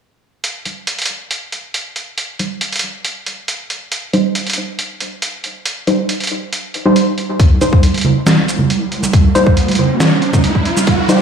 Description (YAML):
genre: deep dubstep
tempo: 138 BPM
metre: 4/4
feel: half-time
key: C minor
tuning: A4 = 439 Hz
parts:
  - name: trip hop sampler-style drum kit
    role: drums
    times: 0.4-11.2 s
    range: hi-hat, shaker, snare drum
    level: -19 LUFS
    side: equal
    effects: studio reverb
  - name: filtered dub chord stab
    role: stabs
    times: 0.7-11.2 s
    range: G3 to C5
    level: -17 LUFS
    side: equal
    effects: chorus, dub echo
  - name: deep soft wobble bass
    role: bass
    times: 7.4-11.2 s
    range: C2 to D2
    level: -23 LUFS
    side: right 2 dB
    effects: chorus, high-pass filter
  - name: electronic kick drum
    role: drums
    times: 7.4-11.0 s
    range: none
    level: -12 LUFS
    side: left 1 dB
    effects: studio reverb
  - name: riser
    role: sound effects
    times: 8.5-11.2 s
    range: none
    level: -20 LUFS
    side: right 2 dB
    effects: none
  - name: congas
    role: percussion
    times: 7.6-11.2 s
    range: none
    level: -16 LUFS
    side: right 3 dB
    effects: none
room: moderate digital room reverb, RT60 1.2 s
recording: played on a big sound system in a bare room, large studio reverb, high-pass filter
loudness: -13 LUFS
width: side -7 dB against mid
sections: 0.4-7.4 A section; 7.4-11.2 B section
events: filter sweep on synth stab 0.4-7.4; build-up 7.4-11.2; riser 8.5-11.2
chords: 0.4 Cm